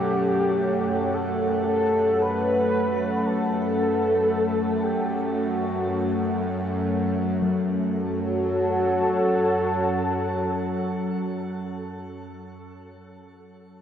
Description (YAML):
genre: dark ambient drone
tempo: free time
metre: none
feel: none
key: F# phrygian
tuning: A4 = 441 Hz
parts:
  - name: mellow horn-like synth lead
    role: melody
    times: 0.0-11.9 s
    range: F#4 to B4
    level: -26 LUFS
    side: equal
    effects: lush chorus, shimmer reverb, diffuse ambient delay
  - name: dark analog pad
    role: sustained chords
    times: 0.0-12.4 s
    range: F#4 to A5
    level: -28 LUFS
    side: equal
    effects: chorus, shimmer reverb
  - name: gamelan-type bossed gongs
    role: arpeggios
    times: 0.0-11.9 s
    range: B2 to F#3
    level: -35 LUFS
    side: left 4 dB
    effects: diffuse ambient delay
  - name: bowed-like drone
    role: drone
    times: 0.0-11.9 s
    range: F#2 to A3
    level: -26 LUFS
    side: equal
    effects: built-in reverb
room: wet cathedral reverb, RT60 5.4 s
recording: in a vast, echoing space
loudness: -22 LUFS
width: side -9 dB against mid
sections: 0.0-7.4 A section; 7.4-11.6 B section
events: none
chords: 0.0 F#m